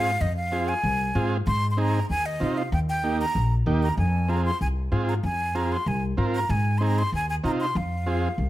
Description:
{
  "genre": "latin, cumbia",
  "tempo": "191 BPM",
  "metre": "4/4",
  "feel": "straight",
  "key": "F minor",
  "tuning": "A4 = 440 Hz",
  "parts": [
    { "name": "breathy jazz flute", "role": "melody", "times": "0.0-8.5 s", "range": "Eb5 to C6", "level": "-28 LUFS", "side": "equal", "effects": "none" },
    { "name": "combo organ", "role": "accompaniment", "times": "0.0-8.3 s", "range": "Bb3 to Bb4", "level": "-28 LUFS", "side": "right 2 dB", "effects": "none" },
    { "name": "upright bass", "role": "bass", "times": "0.0-8.5 s", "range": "Bb1 to C3", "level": "-25 LUFS", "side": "equal", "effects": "none" }
  ],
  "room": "light reverb",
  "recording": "none",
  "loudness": "-22 LUFS",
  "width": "side -15 dB against mid",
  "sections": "0.0-8.5 A section",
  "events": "none",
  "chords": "0.0 Fm; 1.5 Ab; 2.7 Eb; 4.0 Fm; 6.5 Ab; 7.8 Fm"
}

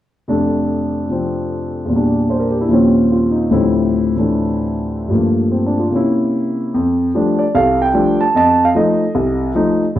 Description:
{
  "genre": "solo jazz",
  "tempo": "149 BPM",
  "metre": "4/4",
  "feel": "swing 66% on 8ths, rubato",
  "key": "F major",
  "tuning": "A4 = 439 Hz",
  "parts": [
    { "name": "warm concert grand piano", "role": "solo", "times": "0.3-10.0 s", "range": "Bb1 to A5", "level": "-13 LUFS", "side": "equal", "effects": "none" }
  ],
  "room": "moderate large studio reverb, RT60 0.8 s",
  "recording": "none",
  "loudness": "-13 LUFS",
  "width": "side -12 dB against mid",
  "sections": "0.3-6.7 A section; 6.7-10.0 B section",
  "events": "none",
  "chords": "0.3 F6; 1.9 Em7b5; 2.7 Eb13; 3.5 Dm11; 5.1 Gm9; 5.9 C7b9; 6.7 F69; 8.4 F7"
}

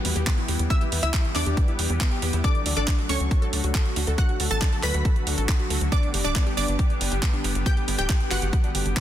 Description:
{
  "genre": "uplifting trance",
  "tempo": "138 BPM",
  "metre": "4/4",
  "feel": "straight",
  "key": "D major",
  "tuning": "A4 = 439 Hz",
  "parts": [
    { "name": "wide unison pluck", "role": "melody", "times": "0.0-9.0 s", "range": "C#4 to B5", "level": "-32 LUFS", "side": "equal", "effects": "sidechain pumping, dub echo" },
    { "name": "analog pluck", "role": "second line", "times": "0.0-9.0 s", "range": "C#6 to B6", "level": "-34 LUFS", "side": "left 1 dB", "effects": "chorus, sidechain pumping, dub echo" },
    { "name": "house drum kit", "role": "drums", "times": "0.0-9.0 s", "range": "handclaps, hi-hat", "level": "-30 LUFS", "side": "right 2 dB", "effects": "sidechain pumping on hats, sidechain pumping on cymbals" },
    { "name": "downlifter", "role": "sound effects", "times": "0.0-2.4 s", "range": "none", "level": "-40 LUFS", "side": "equal", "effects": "none" },
    { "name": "lush unison pad", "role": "sustained chords", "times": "0.1-9.0 s", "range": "D3 to G4", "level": "-32 LUFS", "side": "left 1 dB", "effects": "chorus, sidechain pumping" },
    { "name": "wide unison pluck", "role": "arpeggios", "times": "0.1-9.0 s", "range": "B3 to A4", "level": "-34 LUFS", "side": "left 1 dB", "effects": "sidechain pumping, dub echo" },
    { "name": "tight sequencer bass", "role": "bass", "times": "0.1-8.9 s", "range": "D1 to E2", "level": "-26 LUFS", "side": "equal", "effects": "sidechain pumping" },
    { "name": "electronic kick drum", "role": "drums", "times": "0.3-9.0 s", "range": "none", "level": "-23 LUFS", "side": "equal", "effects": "none" }
  ],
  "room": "little or no reverb",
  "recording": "dense, heavily limited modern master",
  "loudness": "-21 LUFS",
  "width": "side -11 dB against mid",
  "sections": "0.0-9.0 A section",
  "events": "none",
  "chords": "0.0 Em; 2.4 D; 5.9 G"
}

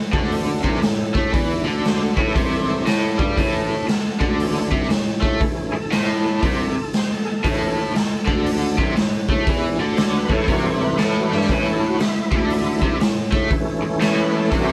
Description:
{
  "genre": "blues rock power trio and southern rock",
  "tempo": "118 BPM",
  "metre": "4/4",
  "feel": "swing 64% on 8ths",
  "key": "unclear",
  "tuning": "A4 = 440 Hz",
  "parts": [
    { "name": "overdriven tonewheel organ", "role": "sustained chords", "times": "0.1-14.7 s", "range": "C#3 to C#5", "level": "-28 LUFS", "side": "equal", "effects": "slow rotary speaker, chorus vibrato" },
    { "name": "raw garage guitar", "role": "riff", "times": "0.1-14.7 s", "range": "A2 to A3", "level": "-25 LUFS", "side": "equal", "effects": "overdrive, tremolo" },
    { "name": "mellow bass clarinet", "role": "bass", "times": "0.1-14.7 s", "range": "C2 to A2", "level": "-28 LUFS", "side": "equal", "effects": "none" },
    { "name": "raw garage drum kit", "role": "drums", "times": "0.1-14.7 s", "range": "hi-hat, kick drum, snare drum", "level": "-23 LUFS", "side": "equal", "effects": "none" }
  ],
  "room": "light reverb",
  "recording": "band playing live in one room",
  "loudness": "-20 LUFS",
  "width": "mono",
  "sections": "0.0-14.7 A section",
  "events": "tonewheel organ solo 0.0-14.7; drum fill 11.2",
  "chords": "0.0 A"
}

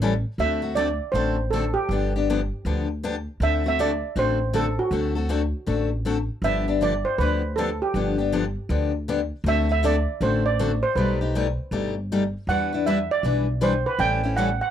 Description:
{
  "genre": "acoustic string swing (jazz manouche)",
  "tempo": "159 BPM",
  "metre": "4/4",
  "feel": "swing 63% on 8ths",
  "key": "D mixolydian",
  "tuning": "A4 = 441 Hz",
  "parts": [
    { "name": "picked steel-string acoustic guitar", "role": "accompaniment", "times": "0.0-14.5 s", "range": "B2 to B4", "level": "-25 LUFS", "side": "left 5 dB", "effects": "none" },
    { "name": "upright bass", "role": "bass", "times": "0.0-14.6 s", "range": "G1 to E2", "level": "-26 LUFS", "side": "equal", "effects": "none" },
    { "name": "steel pan", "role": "melody", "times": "0.4-14.7 s", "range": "F#4 to G5", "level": "-25 LUFS", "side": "right 4 dB", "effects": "none" }
  ],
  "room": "light reverb",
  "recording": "dry, close 1970s-style studio recording",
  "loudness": "-21 LUFS",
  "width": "side -9 dB against mid",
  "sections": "0.4-14.7 A section",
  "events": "none",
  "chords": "0.4 D7; 1.9 G7; 3.4 D7; 6.4 G7; 9.5 D7; 11.0 Baug7; 12.5 Em7; 14.0 A7"
}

